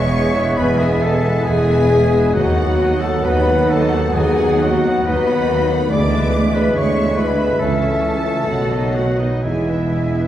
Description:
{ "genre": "classical", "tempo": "60-72 BPM", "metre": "4/4", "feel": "rubato", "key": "E major", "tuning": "A4 = 440 Hz", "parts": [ { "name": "rich chamber violin section", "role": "melody", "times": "0.0-10.3 s", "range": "C#5 to G#5", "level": "-32 LUFS", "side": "left 2 dB", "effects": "none" }, { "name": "concert flute", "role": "second line", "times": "0.0-10.3 s", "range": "D#5 to F#5", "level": "-28 LUFS", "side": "equal", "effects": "none" }, { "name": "rich studio violin section", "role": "second line", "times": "0.0-10.3 s", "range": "D#5 to D6", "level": "-29 LUFS", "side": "left 2 dB", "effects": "none" }, { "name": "warm clarinet", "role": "second line", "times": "0.0-10.3 s", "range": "B3 to C#4", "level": "-28 LUFS", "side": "equal", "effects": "none" }, { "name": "warm oboe", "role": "second line", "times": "0.0-10.3 s", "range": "D#4 to D5", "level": "-28 LUFS", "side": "right 1 dB", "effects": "none" }, { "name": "mellow bassoon", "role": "accompaniment", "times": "0.0-10.3 s", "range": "F#3 to A3", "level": "-25 LUFS", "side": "right 2 dB", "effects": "none" }, { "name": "warm symphonic viola section", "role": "accompaniment", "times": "0.0-10.3 s", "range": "G#3 to C#5", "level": "-27 LUFS", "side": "equal", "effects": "none" }, { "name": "clear trombone section", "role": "sustained chords", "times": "0.0-10.3 s", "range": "D#3 to B3", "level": "-26 LUFS", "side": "right 2 dB", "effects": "none" }, { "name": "mellow French horn section", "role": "sustained chords", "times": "0.0-10.3 s", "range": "D#4 to D5", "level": "-20 LUFS", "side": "left 2 dB", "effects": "none" }, { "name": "concert harp", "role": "arpeggios", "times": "0.0-10.3 s", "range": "B2 to B4", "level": "-29 LUFS", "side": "left 3 dB", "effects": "none" }, { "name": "clear symphonic cello section", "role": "bass", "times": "0.0-10.3 s", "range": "C#2 to B2", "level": "-22 LUFS", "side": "right 1 dB", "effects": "none" }, { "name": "rich studio double bass section", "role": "bass", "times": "0.0-10.3 s", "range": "E1 to D#2", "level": "-22 LUFS", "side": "right 1 dB", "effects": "none" } ], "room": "wet recital hall reverb, RT60 1.5 s", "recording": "heard from further back in the room", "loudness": "-14 LUFS", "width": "side -12 dB against mid", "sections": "0.0-10.3 A section", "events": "none", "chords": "0.0 E; 2.3 B/D#; 5.9 E7/D; 7.6 A/C#; 8.5 B7; 9.4 E", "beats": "0.57 1.47 | 2.35 3.25 4.15 5.07 | 5.92 6.75 7.60 8.49 | 9.44" }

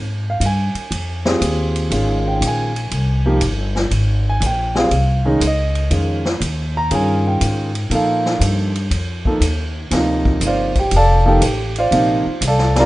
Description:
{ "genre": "modal jazz", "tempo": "120 BPM", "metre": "4/4", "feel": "swing 68% on 8ths", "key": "unclear", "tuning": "A4 = 439 Hz", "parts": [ { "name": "upright bass", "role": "bass", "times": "0.0-12.9 s", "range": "F1 to Bb2", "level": "-18 LUFS", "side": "equal", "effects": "none" }, { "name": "dark concert grand piano", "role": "accompaniment", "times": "0.3-12.9 s", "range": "C3 to Bb5", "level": "-18 LUFS", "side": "right 1 dB", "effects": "none" }, { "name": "swinging big-band drum kit", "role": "drums", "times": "0.4-12.9 s", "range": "hi-hat, kick drum, ride cymbal, snare drum", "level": "-24 LUFS", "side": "equal", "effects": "none" } ], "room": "light reverb, small room ambience", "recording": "rough home demo mix, nothing above 10.3 kHz", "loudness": "-15 LUFS", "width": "side -17 dB against mid", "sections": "0.0-12.9 A section", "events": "none", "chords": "0.0 Dbmaj9; 7.9 Bbmaj9", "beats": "0.42 0.92 1.42 | 1.92 2.42 2.92 3.42 | 3.92 4.42 4.92 5.42 | 5.92 6.42 6.92 7.42 | 7.92 8.41 8.91 9.42 | 9.92 10.42 10.92 11.42 | 11.92 12.42" }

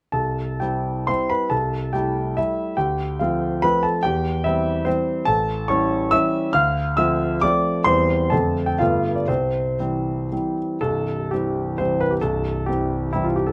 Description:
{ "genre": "classical, romantic triple-time dance for piano with dotted rhythms", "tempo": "110-152 BPM", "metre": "3/4", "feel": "rubato", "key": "C major", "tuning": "A4 = 435 Hz", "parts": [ { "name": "clear concert grand piano", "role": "solo", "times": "0.1-13.5 s", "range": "C1 to F6", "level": "-22 LUFS", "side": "equal", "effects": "none" } ], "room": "light reverb", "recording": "close, detailed microphones", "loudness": "-22 LUFS", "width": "mono", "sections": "0.1-10.8 A section; 10.8-13.5 A section", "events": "none", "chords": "0.1 C; 1.5 Am7/C; 2.8 Dm7; 4.0 C/E; 5.3 A7; 6.5 Dm7; 7.9 C/E; 8.3 Dm7/F; 8.8 G9; 9.3 C", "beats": "| 0.14 0.62 1.09 | 1.52 1.95 2.38 | 2.78 3.20 3.63 | 4.04 4.45 4.87 | 5.27 5.69 6.12 | 6.54 6.97 7.43 | 7.86 8.32 8.81 | 9.29 9.79 10.32 | 10.82 11.31 11.79 | 12.22 12.67 13.13" }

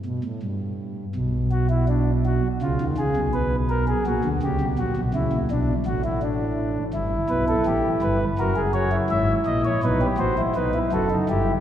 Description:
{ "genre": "classical, baroque-style 3-part fugue for pipe organ", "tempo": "83 BPM", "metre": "4/4", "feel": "straight", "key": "unclear", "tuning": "A4 = 440 Hz", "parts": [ { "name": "chamber organ, principal", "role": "solo", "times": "0.1-11.5 s", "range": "F#1 to E5", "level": "-20 LUFS", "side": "equal", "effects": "none" } ], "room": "wet church reverb, RT60 2.8 s", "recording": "heard from further back in the room", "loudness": "-20 LUFS", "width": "side -10 dB against mid", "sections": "0.0-11.6 A section", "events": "none", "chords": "0.0 N.C.; 1.2 Bm; 2.6 C#7; 4.1 F#/A#; 5.5 Bm; 6.9 Em/G; 8.4 F#7; 9.8 B", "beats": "0.42 | 1.15 1.88 2.61 3.33 | 4.06 4.78 5.50 6.22 | 6.94 7.66 8.38 9.11 | 9.83 10.56 11.29" }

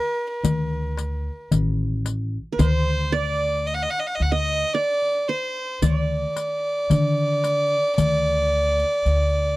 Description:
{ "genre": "Turkish makam ensemble", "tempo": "112 BPM (eighths)", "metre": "10/8", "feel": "straight", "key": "D makam hicaz", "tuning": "A4 = 436 Hz", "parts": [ { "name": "warm violin", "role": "melody", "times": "0.0-9.6 s", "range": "B4-44c to F#5", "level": "-23 LUFS", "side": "right 1 dB", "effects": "none" }, { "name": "qanun", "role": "second line", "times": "0.0-9.6 s", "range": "B4-40c to Eb5", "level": "-29 LUFS", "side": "right 5 dB", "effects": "none" }, { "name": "upright bass", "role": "bass", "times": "0.4-9.6 s", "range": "A1 to D3", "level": "-24 LUFS", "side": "equal", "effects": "none" }, { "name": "darbuka", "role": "percussion", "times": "0.4-9.5 s", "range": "none", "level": "-24 LUFS", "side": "left 2 dB", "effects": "none" }, { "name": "riq", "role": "percussion", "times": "0.4-9.2 s", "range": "none", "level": "-29 LUFS", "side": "left 8 dB", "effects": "none" } ], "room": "little or no reverb", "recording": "dry, close 1970s-style studio recording", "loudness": "-20 LUFS", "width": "side -19 dB against mid", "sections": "0.0-9.6 A section", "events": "none", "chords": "none", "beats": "0.45 0.98 1.52 2.06 | 2.60 3.14 3.67 4.21 4.75 5.29 5.83 6.37 6.90 7.44 | 7.98 8.52 9.06" }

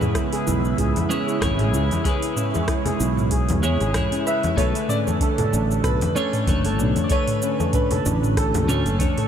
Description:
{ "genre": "sunset chillout", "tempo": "95 BPM", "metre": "4/4", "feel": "swing 55% on 16ths", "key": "B dorian", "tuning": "A4 = 439 Hz", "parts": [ { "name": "twelve-string electric guitar", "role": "accompaniment", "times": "0.0-9.3 s", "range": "D3 to C#5", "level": "-26 LUFS", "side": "moving between left 5 dB and right 7 dB", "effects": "auto-pan, tape echo" }, { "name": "airy breathy pad", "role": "sustained chords", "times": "0.0-4.5 s", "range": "C#3 to E4", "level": "-30 LUFS", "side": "right 1 dB", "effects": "chorus, phaser" }, { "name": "steel pan", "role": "arpeggios", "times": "0.0-9.3 s", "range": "C#4 to B4", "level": "-28 LUFS", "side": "right 2 dB", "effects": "tape echo" }, { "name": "smooth R&B drum kit", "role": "drums", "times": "0.0-9.3 s", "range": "hi-hat, rim click, shaker, toms", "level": "-28 LUFS", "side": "right 1 dB", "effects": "overdrive" }, { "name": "congas", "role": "percussion", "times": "0.0-9.1 s", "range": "none", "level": "-28 LUFS", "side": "left 3 dB", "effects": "none" }, { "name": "electronic kick drum", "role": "drums", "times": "0.1-9.1 s", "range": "none", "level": "-25 LUFS", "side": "equal", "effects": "none" }, { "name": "sustaining fretless electric bass", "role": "bass", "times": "0.5-9.0 s", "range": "F#1 to E2", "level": "-23 LUFS", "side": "equal", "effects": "tube saturation, analog chorus" }, { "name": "warm baby grand piano", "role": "melody", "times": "4.3-9.3 s", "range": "A4 to E5", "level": "-26 LUFS", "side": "equal", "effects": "wide subtle chorus, tape echo" } ], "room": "moderate huge ambient reverb, RT60 8.4 s", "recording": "dreamy mix soaked in reverb", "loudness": "-19 LUFS", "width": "side -8 dB against mid", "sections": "0.0-4.6 A section; 4.6-9.3 B section", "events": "none", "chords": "0.0 C#m7; 4.6 Bm9", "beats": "0.16 0.79 1.42 | 2.05 2.68 3.31 3.95 | 4.58 5.21 5.84 6.47 | 7.11 7.74 8.37 9.00" }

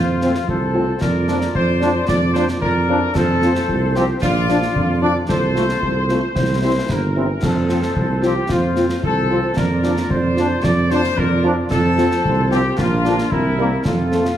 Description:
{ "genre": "military-style march for wind band", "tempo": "112 BPM", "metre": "2/4", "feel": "straight", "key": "F major", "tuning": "A4 = 438 Hz", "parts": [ { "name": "clear trumpet section", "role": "melody", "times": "0.0-14.4 s", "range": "E4 to D5", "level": "-22 LUFS", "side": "left 2 dB", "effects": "none" }, { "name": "warm woodwind section", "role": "second line", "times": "0.0-14.3 s", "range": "C4 to D5", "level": "-25 LUFS", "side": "left 1 dB", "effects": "none" }, { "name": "mellow tuba", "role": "bass", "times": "0.0-14.3 s", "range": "G1 to F2", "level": "-19 LUFS", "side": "right 2 dB", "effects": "none" }, { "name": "mellow French horn section", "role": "accompaniment", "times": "0.2-14.2 s", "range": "D3 to F4", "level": "-25 LUFS", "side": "left 3 dB", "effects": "none" }, { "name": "warm trombone section", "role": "sustained chords", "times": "0.2-14.2 s", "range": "E3 to D4", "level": "-25 LUFS", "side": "right 1 dB", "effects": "none" }, { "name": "concert snare drum, concert bass drum and clash cymbals", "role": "drums", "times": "0.2-14.4 s", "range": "none", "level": "-25 LUFS", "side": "left 1 dB", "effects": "none" } ], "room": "wet large studio reverb, RT60 1.3 s", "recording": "heavily compressed radio sound", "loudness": "-15 LUFS", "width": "side -11 dB against mid", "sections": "0.0-14.4 A section", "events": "none", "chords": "0.0 F; 1.0 Bb/F; 3.2 F; 4.2 Bb; 5.3 F/C; 6.4 C; 7.4 F; 9.6 Bb/F; 11.7 F; 12.8 Bb; 13.3 C7; 13.9 F", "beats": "0.48 | 1.01 1.55 | 2.08 2.62 | 3.15 3.69 | 4.22 4.75 | 5.29 5.82 | 6.36 6.89 | 7.43 7.96 | 8.50 9.03 | 9.57 10.10 | 10.64 11.17 | 11.71 12.24 | 12.78 13.31 | 13.85" }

